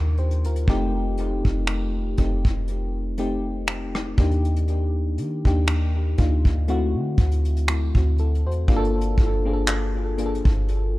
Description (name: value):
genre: contemporary R&B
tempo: 60 BPM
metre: 4/4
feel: swing 54% on 16ths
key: unclear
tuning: A4 = 440 Hz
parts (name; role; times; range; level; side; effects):
- mellow FM electric piano; accompaniment; 0.0-11.0 s; A3 to C5; -27 LUFS; left 2 dB; chorus, tape echo
- clean 808-style bass; bass; 0.0-11.0 s; F1 to Eb3; -23 LUFS; equal; none
- soft brush drum kit; drums; 0.2-10.9 s; finger snaps, handclaps, hi-hat, kick drum, rim click; -22 LUFS; equal; none
room: little or no reverb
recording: echo-heavy mix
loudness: -20 LUFS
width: side -18 dB against mid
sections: 0.0-8.7 A section; 8.7-11.0 B section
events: none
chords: 0.0 Ebmaj13; 0.7 F7; 4.2 Ebmaj9; 6.7 D7; 8.7 Gm7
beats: | 0.68 1.68 2.68 3.68 | 4.68 5.68 6.68 7.68 | 8.68 9.68 10.68